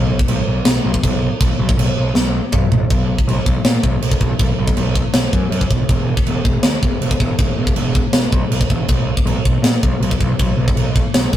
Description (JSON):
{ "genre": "heavy metal", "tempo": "160 BPM", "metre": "4/4", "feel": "straight", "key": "unclear", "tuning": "A4 = 443 Hz", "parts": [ { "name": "fuzz picked electric bass", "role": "bass", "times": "0.0-11.4 s", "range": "E1 to A#2", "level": "-19 LUFS", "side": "equal", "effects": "overdrive" }, { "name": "tight metal drum kit", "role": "drums", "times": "0.2-11.4 s", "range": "china cymbal, kick drum, snare drum, toms", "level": "-16 LUFS", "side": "equal", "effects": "none" } ], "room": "light reverb", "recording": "rough rehearsal-room recording, warm saturation", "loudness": "-14 LUFS", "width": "side -12 dB against mid", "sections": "0.0-2.9 A section; 2.9-11.4 B section", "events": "drum fill 2.1-2.9", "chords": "none" }